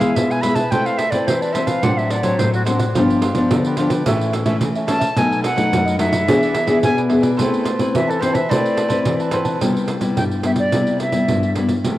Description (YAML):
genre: samba and choro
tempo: 108 BPM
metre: 4/4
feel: straight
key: A minor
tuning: A4 = 440 Hz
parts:
  - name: silver concert flute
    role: melody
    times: 0.0-11.5 s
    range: F#4 to B5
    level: -22 LUFS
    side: right 1 dB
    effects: cassette tape
  - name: cavaquinho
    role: accompaniment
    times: 0.0-9.6 s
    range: D4 to A5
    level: -27 LUFS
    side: right 3 dB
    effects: cassette tape
  - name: nylon-string guitar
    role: accompaniment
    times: 0.0-12.0 s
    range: F#2 to B4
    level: -18 LUFS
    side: left 2 dB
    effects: cassette tape
  - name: pandeiro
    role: percussion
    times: 0.0-12.0 s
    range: none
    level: -23 LUFS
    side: right 3 dB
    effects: none
room: moderate lush hall reverb, RT60 2.8 s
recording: home recording on cassette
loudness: -15 LUFS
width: side -15 dB against mid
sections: 0.0-9.6 A section; 9.6-12.0 B section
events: flute solo 0.0-9.6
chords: 0.0 E; 0.7 Amadd9; 1.8 D7/A; 2.9 G7; 4.1 A; 5.2 B7; 6.3 E7; 7.4 Amadd9; 9.6 Cmaj7